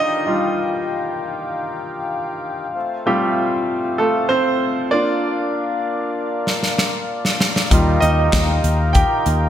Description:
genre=piano-driven pop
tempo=97 BPM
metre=4/4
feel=straight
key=unclear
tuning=A4 = 440 Hz
part: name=bright concert grand piano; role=accompaniment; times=0.0-9.5 s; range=G3 to G5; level=-20 LUFS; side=right 1 dB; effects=none
part: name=mellow accordion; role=sustained chords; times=0.0-9.5 s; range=Eb3 to Bb4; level=-24 LUFS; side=left 2 dB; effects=none
part: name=modern studio drum kit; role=drums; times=6.5-9.4 s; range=handclaps, hi-hat, kick drum, snare drum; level=-18 LUFS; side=equal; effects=gated reverb
part: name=vintage muted picked electric bass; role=bass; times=7.7-9.5 s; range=Eb2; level=-18 LUFS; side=left 1 dB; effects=none
room=wet lush hall reverb, RT60 1.8 s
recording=bright 1980s-style digital production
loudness=-17 LUFS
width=side -10 dB against mid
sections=0.0-9.5 A section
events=grand piano solo 0.0-9.5; drum fill 6.5-7.7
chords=0.0 Ebadd9; 2.8 F; 4.9 Bb; 7.7 Ebadd9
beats=| 0.27 0.89 1.51 2.13 | 2.75 3.37 3.99 4.61 | 5.23 5.85 6.47 7.09 | 7.71 8.34 8.96

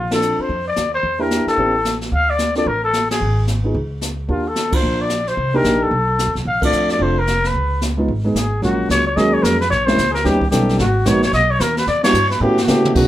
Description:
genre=jazz, small-group swing and bop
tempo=221 BPM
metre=4/4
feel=swing 61% on 8ths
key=Bb major, F# major from 8.6 s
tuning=A4 = 445 Hz
part: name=growling trumpet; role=melody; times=0.0-13.1 s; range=F4 to F5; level=-18 LUFS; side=left 2 dB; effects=none
part: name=upright bass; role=bass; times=0.0-13.1 s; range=F1 to C#3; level=-22 LUFS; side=equal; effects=none
part: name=dark upright piano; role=accompaniment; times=0.1-13.1 s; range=F#3 to Bb4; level=-19 LUFS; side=right 1 dB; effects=none
part: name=jazz brush drum kit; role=drums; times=0.1-13.1 s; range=brushed snare drum, crash cymbal, hi-hat, kick drum, ride cymbal, snare drum, toms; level=-22 LUFS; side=equal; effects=none
room=moderate club reverb, RT60 0.6 s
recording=none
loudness=-15 LUFS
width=side -13 dB against mid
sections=0.0-8.6 A section; 8.6-13.1 B section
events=band accent 0.1, 3.1, 4.7, 6.6, 12.0; drum fill 12.4-13.0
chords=0.0 Bbmaj7; 1.0 Em7b5; 1.6 A7; 2.1 D5; 3.2 Abm; 3.7 N.C.; 4.3 Ebmaj7; 5.4 Cm7; 5.9 B7; 6.5 Bbmaj7; 7.5 Db7(no3); 8.6 F#maj7; 9.7 A#m7b5; 10.3 D#aug7; 10.8 G#m9; 11.9 Em7; 12.4 A9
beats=0.22 0.49 0.77 | 1.04 1.31 1.58 1.85 | 2.12 2.39 2.66 2.94 | 3.21 3.48 3.75 4.02 | 4.29 4.56 4.83 5.11 | 5.38 5.65 5.92 6.19 | 6.46 6.73 7.00 7.27 | 7.54 7.82 8.09 8.36 | 8.63 8.90 9.17 9.44 | 9.71 9.98 10.25 10.52 | 10.79 11.06 11.33 11.61 | 11.88 12.15 12.42 12.69 | 12.96

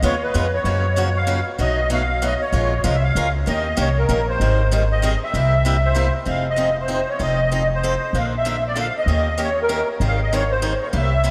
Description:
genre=acoustic string swing (jazz manouche)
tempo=193 BPM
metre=3/4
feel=swing 58% on 8ths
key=F minor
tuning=A4 = 442 Hz
part: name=musette accordion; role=melody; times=0.0-11.3 s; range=Bb4 to F5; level=-24 LUFS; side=equal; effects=none
part: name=picked swing-style acoustic guitar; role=accompaniment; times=0.0-11.3 s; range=B2 to Bb4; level=-27 LUFS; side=equal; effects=none
part: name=upright bass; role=bass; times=0.0-11.3 s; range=F1 to Gb2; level=-23 LUFS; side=equal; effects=none
room=wet cathedral reverb, RT60 5.9 s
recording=in a vast, echoing space, faint mains hum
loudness=-20 LUFS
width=mono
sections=0.0-6.3 A section; 6.3-11.3 B section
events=none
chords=0.0 Db7; 0.7 Gbmaj7; 1.6 B7; 2.5 Bbm7; 3.5 Eb7; 4.4 Abmaj7; 5.3 C7; 6.3 Fm7; 7.2 F7; 8.1 Bbmaj7; 9.1 Eb7; 10.0 Abmaj7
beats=0.04 0.35 | 0.66 0.97 1.28 | 1.60 1.91 2.22 | 2.53 2.85 3.16 | 3.47 3.78 4.09 | 4.40 4.71 5.03 | 5.34 5.65 5.96 | 6.27 6.58 6.89 | 7.20 7.51 7.82 | 8.13 8.44 8.76 | 9.06 9.38 9.69 | 9.99 10.30 10.62 | 10.93 11.23

